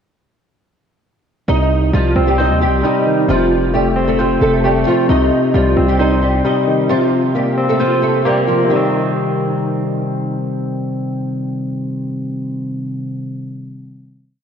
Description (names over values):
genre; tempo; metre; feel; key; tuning
hip hop, trap; 133 BPM; 4/4; half-time; C dorian; A4 = 440 Hz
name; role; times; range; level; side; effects
flamenco guitar; melody; 1.5-10.0 s; Eb3 to Eb5; -17 LUFS; right 2 dB; ensemble chorus, low-pass filter, diffuse ambient delay
barky tine electric piano; accompaniment; 1.5-14.4 s; C3 to C5; -16 LUFS; left 1 dB; lush chorus, low-pass filter
distorted 808-style bass; bass; 1.5-6.4 s; F1 to Eb2; -18 LUFS; equal; distortion
room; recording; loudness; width
wet lush hall reverb, RT60 2.9 s; dreamy mix soaked in reverb, cassette tape; -14 LUFS; side -7 dB against mid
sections
1.5-8.7 hook; 8.7-12.3 final chord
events
none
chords
1.5 Cm; 3.3 F; 5.1 Cm; 6.9 Bbsus2; 8.7 Cm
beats
| 1.48 1.93 2.38 2.84 | 3.29 3.74 4.19 4.64 | 5.09 5.54 5.99 6.45 | 6.90 7.35 7.80 8.25 | 8.70 9.15 9.60 10.05 | 10.51 10.96 11.41 11.86